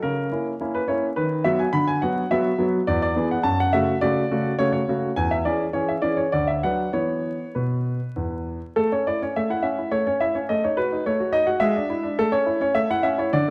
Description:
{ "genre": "classical-period piano sonatina", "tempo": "105 BPM", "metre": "3/4", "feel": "rubato", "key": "A major", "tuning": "A4 = 441 Hz", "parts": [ { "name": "clear grand piano", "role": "solo", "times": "0.0-13.5 s", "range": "D2 to B5", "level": "-23 LUFS", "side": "equal", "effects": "none" } ], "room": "moderate recital hall reverb, RT60 1.7 s", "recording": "vinyl crackle", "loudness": "-23 LUFS", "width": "mono", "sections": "0.0-8.8 A section; 8.8-13.5 B section", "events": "none", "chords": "0.0 A#dim/C#; 1.2 B/D#; 1.7 Bm/D; 2.9 E7; 3.4 F#m; 5.2 C#m/E; 6.3 Bm/D; 6.9 E5; 8.8 A; 10.5 B9/A; 11.6 E7/G#; 12.2 A" }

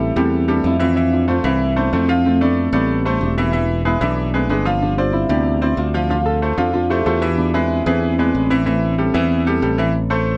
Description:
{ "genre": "latin", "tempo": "187 BPM", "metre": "4/4", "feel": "straight", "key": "A minor", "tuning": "A4 = 444 Hz", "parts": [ { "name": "concert harp", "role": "melody", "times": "0.0-10.4 s", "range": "G3 to C5", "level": "-21 LUFS", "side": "equal", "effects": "none" }, { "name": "bright concert grand piano", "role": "accompaniment", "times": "0.0-10.4 s", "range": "C3 to F5", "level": "-24 LUFS", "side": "equal", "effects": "none" }, { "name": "modern bright fingered electric bass", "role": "bass", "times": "0.0-10.4 s", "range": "E1 to F2", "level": "-23 LUFS", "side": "equal", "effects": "none" } ], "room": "little or no reverb", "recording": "close, detailed microphones", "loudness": "-18 LUFS", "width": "mono", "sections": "0.0-9.9 A section", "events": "none", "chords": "0.0 Am7; 1.0 Fmaj7; 2.2 Dm7; 3.5 E7; 4.8 G7sus4; 6.1 Dm7; 7.4 E7; 8.7 Am7" }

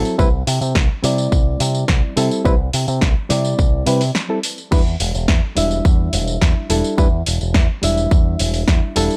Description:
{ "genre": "nu-disco, nu disco", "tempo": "106 BPM", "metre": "4/4", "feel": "straight", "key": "E minor", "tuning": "A4 = 440 Hz", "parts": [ { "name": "reed electric piano", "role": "accompaniment", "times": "0.0-9.2 s", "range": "F#3 to E5", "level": "-24 LUFS", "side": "equal", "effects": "sidechain pumping, digital delay" }, { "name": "picked electric bass with an envelope filter", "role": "bass", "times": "0.0-9.1 s", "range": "E1 to C3", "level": "-22 LUFS", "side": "equal", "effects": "none" }, { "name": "house drum kit", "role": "drums", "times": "0.1-9.2 s", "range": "crash cymbal, hi-hat, snare drum, tambourine", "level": "-25 LUFS", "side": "equal", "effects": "small room ambience" }, { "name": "electronic kick drum", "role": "drums", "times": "0.2-8.8 s", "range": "none", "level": "-18 LUFS", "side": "equal", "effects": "small room ambience" } ], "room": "little or no reverb", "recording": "none", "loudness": "-17 LUFS", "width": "mono", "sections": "0.0-9.2 A section", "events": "break 4.2-4.7", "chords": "0.2 C; 4.7 Em7" }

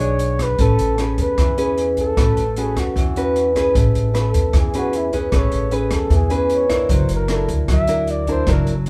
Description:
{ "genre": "bossa nova", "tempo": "152 BPM", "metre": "4/4", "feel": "straight", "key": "A major", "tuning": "A4 = 440 Hz", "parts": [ { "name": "breathy flugelhorn", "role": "melody", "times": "0.0-8.6 s", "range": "E4 to E5", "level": "-26 LUFS", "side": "equal", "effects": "none" }, { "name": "nylon-string guitar", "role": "accompaniment", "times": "0.0-8.9 s", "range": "B2 to C#5", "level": "-23 LUFS", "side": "equal", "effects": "none" }, { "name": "upright bass", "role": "bass", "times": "0.0-8.9 s", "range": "F#1 to E2", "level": "-23 LUFS", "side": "equal", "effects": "none" }, { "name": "open jazz drum kit", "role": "drums", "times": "0.0-8.9 s", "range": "hi-hat, kick drum, rim click", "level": "-24 LUFS", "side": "equal", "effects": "none" } ], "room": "moderate studio ambience, RT60 0.5 s", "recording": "band playing live in one room", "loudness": "-18 LUFS", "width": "mono", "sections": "0.0-3.7 A section; 3.7-8.9 B section", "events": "flugelhorn solo 3.7-8.9", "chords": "0.0 E6 (rootless); 0.6 Amaj9; 2.2 A69; 3.7 Amaj9; 6.9 F#7b13" }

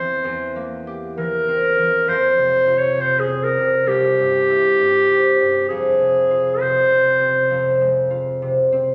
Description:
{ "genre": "classical, romantic duo for clarinet and harp", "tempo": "66 BPM", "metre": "4/4", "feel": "rubato", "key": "F minor", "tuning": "A4 = 440 Hz", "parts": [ { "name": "warm clarinet", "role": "melody", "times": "0.0-8.0 s", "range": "G4 to Db5", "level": "-20 LUFS", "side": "equal", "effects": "none" }, { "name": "concert harp", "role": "accompaniment", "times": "0.0-8.9 s", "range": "C2 to G4", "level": "-21 LUFS", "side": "equal", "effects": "none" } ], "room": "moderate recital hall reverb, RT60 1.5 s", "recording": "recorded on a phone in the room, studio reverb", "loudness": "-18 LUFS", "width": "mono", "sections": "0.0-8.9 A section", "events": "none", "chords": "0.0 C7/E; 2.1 F5; 3.9 C; 5.7 Fm" }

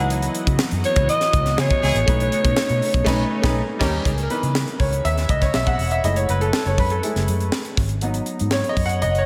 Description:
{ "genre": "polished 1980s jazz-funk pop", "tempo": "121 BPM", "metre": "4/4", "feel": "straight", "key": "C# minor", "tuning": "A4 = 436 Hz", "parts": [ { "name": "growling alto saxophone", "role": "melody", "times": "0.0-3.6 s", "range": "C#5 to F#5", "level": "-25 LUFS", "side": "equal", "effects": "slapback echo" }, { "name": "clear grand piano", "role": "accompaniment", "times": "0.0-9.3 s", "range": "E3 to F#5", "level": "-26 LUFS", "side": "equal", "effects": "subtle chorus, slapback echo" }, { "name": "lush unison pad", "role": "sustained chords", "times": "0.0-4.0 s", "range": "C#3 to D#5", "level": "-33 LUFS", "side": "equal", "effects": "chorus" }, { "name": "vintage muted fingered electric bass", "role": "bass", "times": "0.0-9.2 s", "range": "E1 to C#3", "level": "-25 LUFS", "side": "equal", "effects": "none" }, { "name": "tight funk drum kit", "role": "drums", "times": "0.1-9.3 s", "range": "crash cymbal, hi-hat, kick drum, snare drum", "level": "-26 LUFS", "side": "equal", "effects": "none" }, { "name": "warm horn section", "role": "second line", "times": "1.6-3.9 s", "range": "G#3 to G#4", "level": "-34 LUFS", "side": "equal", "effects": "slapback echo" } ], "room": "moderate lush hall reverb, RT60 2.3 s", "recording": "big arena sound", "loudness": "-20 LUFS", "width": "mono", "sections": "0.0-4.1 A section; 4.1-9.3 B section", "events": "band accent 3.1-4.1; grand piano solo 4.1-9.3", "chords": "0.0 C#m11; 2.1 B9; 3.6 D#7; 4.1 C#m7; 6.0 F#m9; 7.8 G#m7" }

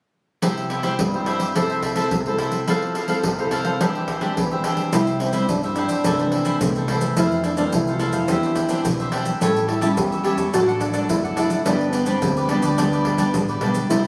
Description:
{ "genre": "samba and choro", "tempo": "107 BPM", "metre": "4/4", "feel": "straight", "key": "C major", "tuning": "A4 = 440 Hz", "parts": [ { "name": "cavaquinho", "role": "accompaniment", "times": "0.4-14.1 s", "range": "D4 to F#5", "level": "-29 LUFS", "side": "equal", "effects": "none" }, { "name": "nylon-string guitar", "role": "accompaniment", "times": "0.4-14.1 s", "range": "F2 to A4", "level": "-26 LUFS", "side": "equal", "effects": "none" }, { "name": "surdo, pandeiro and tube shaker", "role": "percussion", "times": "0.4-14.0 s", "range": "none", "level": "-28 LUFS", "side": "equal", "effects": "none" }, { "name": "breathy trombone", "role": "melody", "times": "4.9-14.0 s", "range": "B3 to A4", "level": "-25 LUFS", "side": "equal", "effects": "none" }, { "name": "vintage muted fingered electric bass", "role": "bass", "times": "4.9-14.1 s", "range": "F#1 to G2", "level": "-31 LUFS", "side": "equal", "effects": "none" } ], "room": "moderate large studio reverb, RT60 1.3 s", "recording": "recorded on a phone in the room, studio reverb, compression", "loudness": "-21 LUFS", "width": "mono", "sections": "0.4-4.9 A section; 4.9-14.1 B section", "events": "none", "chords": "0.4 C; 1.6 Am/C; 2.7 Fmaj7; 3.8 Cadd9/E; 4.9 C; 6.0 Am/C; 7.2 Fmaj7; 8.3 Cadd9/E; 9.4 A7; 10.5 D/A; 11.7 G" }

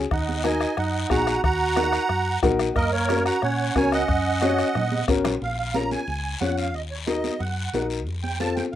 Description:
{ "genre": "latin, cumbia", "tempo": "181 BPM", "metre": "4/4", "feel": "straight", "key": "Eb minor", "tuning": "A4 = 441 Hz", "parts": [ { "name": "hollow-body short-scale fingered electric bass", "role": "bass", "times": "0.0-8.6 s", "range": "Ab1 to Bb2", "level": "-29 LUFS", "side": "equal", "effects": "none" }, { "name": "musette accordion", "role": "melody", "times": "0.1-8.8 s", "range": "Bb4 to Bb5", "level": "-26 LUFS", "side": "right 4 dB", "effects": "none" }, { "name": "mellow clarinet", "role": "second line", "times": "0.1-5.1 s", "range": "Bb3 to Gb4", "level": "-28 LUFS", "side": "right 4 dB", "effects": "none" }, { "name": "bombo", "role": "percussion", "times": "0.1-5.4 s", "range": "none", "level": "-27 LUFS", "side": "left 1 dB", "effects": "none" }, { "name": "congas", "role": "percussion", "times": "0.1-8.7 s", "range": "none", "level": "-32 LUFS", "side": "right 6 dB", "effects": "none" }, { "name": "guiro", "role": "percussion", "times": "0.1-8.8 s", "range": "none", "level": "-36 LUFS", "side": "left 7 dB", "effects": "none" }, { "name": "dark upright piano", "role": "accompaniment", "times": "0.4-8.6 s", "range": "C4 to Gb5", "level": "-25 LUFS", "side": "left 5 dB", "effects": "none" } ], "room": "light reverb", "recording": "rough home demo mix", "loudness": "-21 LUFS", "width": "side -12 dB against mid", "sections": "0.0-5.4 A section; 5.4-8.8 B section", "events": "upright piano fill 2.3-2.8; drum fill 4.9-5.4", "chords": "0.1 Ebm; 2.8 Gb; 5.4 Bbm; 6.7 Ebm; 8.1 F" }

